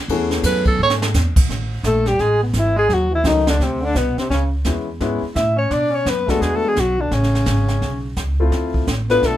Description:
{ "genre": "jazz, small-group swing and bop", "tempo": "171 BPM", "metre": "4/4", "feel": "swing 63% on 8ths", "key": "A major", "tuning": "A4 = 440 Hz", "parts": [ { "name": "clear concert grand piano", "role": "accompaniment", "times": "0.1-1.1, 3.3-9.4 s", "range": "E3 to G#4", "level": "-22 LUFS", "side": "left 4 dB", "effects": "none" }, { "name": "upright bass", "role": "bass", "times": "0.1-9.4 s", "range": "G#1 to B2", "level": "-20 LUFS", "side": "equal", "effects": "none" }, { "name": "jazz brush drum kit", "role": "drums", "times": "0.1-9.4 s", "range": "brushed snare drum, crash cymbal, hi-hat, kick drum, ride cymbal, snare drum", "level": "-22 LUFS", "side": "right 1 dB", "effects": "none" }, { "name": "breathy tenor saxophone", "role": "second line", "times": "0.5-9.4 s", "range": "B2 to C#5", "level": "-24 LUFS", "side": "right 4 dB", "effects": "none" }, { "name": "clear alto saxophone", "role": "melody", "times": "1.9-9.4 s", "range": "B3 to E5", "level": "-19 LUFS", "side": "left 2 dB", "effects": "none" } ], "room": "light reverb", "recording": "minimal, uncompressed stereo recording", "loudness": "-16 LUFS", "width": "side -13 dB against mid", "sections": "0.0-1.5 A section; 1.5-9.4 B section", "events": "tenor saxophone solo 0.0-1.5; drum fill 0.8-1.1", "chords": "0.0 Amaj9; 1.5 Eadd11; 2.9 D#m7b5; 3.6 Csus2; 4.3 C#m7; 5.7 Bm; 6.4 E9; 7.1 Amaj7; 8.5 Dm7", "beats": "| 0.09 0.44 0.79 1.14 | 1.49 1.84 2.19 2.54 | 2.90 3.25 3.60 3.95 | 4.30 4.66 5.01 5.36 | 5.71 6.06 6.41 6.77 | 7.12 7.47 7.82 8.17 | 8.53 8.88 9.23" }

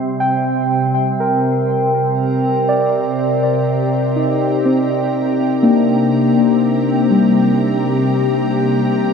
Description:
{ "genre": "ambient", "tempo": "61 BPM", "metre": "4/4", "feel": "straight", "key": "unclear", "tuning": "A4 = 440 Hz", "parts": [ { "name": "organ-like drone", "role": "drone", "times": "0.0-9.1 s", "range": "C3 to G4", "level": "-18 LUFS", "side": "equal", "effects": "ensemble chorus, built-in reverb" }, { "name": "muted felt-like synth keys", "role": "arpeggios", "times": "0.2-9.1 s", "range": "G3 to G5", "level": "-15 LUFS", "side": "left 1 dB", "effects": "chorus, ping-pong delay" }, { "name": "rich studio violin section", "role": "texture", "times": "2.2-9.1 s", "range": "Bb4 to Bb5", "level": "-34 LUFS", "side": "equal", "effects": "none" } ], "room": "wet cathedral reverb, RT60 4.7 s", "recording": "in a vast, echoing space", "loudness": "-13 LUFS", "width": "side -6 dB against mid", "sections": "0.0-2.2 A section; 2.2-9.1 B section", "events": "fade-in on violin section 2.2-9.1", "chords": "0.0 C7(no3); 2.2 Cm7", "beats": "0.22 1.21 | 2.19 3.17 4.16 5.14 | 6.12 7.11 8.09 9.07" }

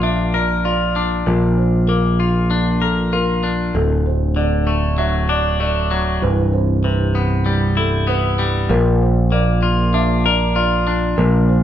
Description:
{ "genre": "post-rock", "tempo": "97 BPM", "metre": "4/4", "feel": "straight", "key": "unclear", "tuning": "A4 = 443 Hz", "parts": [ { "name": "felt-muted upright piano", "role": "arpeggios", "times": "0.0-11.6 s", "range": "A4 to E5", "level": "-24 LUFS", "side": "right 3 dB", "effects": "none" }, { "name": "twangy electric guitar", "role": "arpeggios", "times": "0.0-11.6 s", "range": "C2 to Bb4", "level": "-19 LUFS", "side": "left 2 dB", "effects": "none" }, { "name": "growling picked electric bass", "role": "bass", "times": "0.0-11.6 s", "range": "C1 to Bb1", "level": "-18 LUFS", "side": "equal", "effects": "overdrive" } ], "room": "wet large studio reverb, RT60 1.1 s", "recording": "band playing live in one room", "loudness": "-15 LUFS", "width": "side -10 dB against mid", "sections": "0.0-11.6 A section", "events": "none", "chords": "0.0 Bb; 3.7 Dadd9; 6.2 Cmaj7; 8.7 Bb", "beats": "0.03 0.65 | 1.27 1.89 2.50 3.12 | 3.74 4.36 4.98 5.60 | 6.22 6.84 7.46 8.08 | 8.70 9.32 9.94 10.56 | 11.18" }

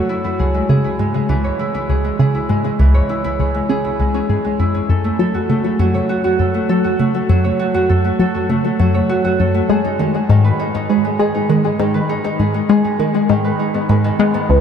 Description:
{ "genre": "ambient, sequencer-driven space music", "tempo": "100 BPM", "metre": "4/4", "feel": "straight", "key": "unclear", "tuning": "A4 = 440 Hz", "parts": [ { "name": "Celtic harp", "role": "arpeggios", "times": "0.0-14.6 s", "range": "D#3 to C#5", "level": "-18 LUFS", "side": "right 1 dB", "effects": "auto-pan, low-pass filter, shimmer reverb, ping-pong delay" }, { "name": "tight sequenced synth", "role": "riff", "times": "0.4-14.6 s", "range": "C#2 to G#3", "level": "-16 LUFS", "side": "left 1 dB", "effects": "chorus, phaser, ping-pong delay" }, { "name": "expressive synth lead", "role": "melody", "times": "14.5-14.6 s", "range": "B4", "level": "-13 LUFS", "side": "left 1 dB", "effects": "wide subtle chorus" } ], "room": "wet huge ambient reverb, RT60 7.9 s", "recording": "dark, warm production", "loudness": "-14 LUFS", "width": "side -8 dB against mid", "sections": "0.0-14.5 A section", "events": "filter sweep on synth arpeggio sound 0.0-14.5", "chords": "0.1 C#m; 4.9 F#m; 9.7 G#m", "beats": "| 0.09 0.69 1.29 1.89 | 2.49 3.09 3.69 4.29 | 4.89 5.49 6.09 6.69 | 7.29 7.89 8.49 9.09 | 9.69 10.29 10.89 11.49 | 12.09 12.69 13.29 13.89 | 14.49" }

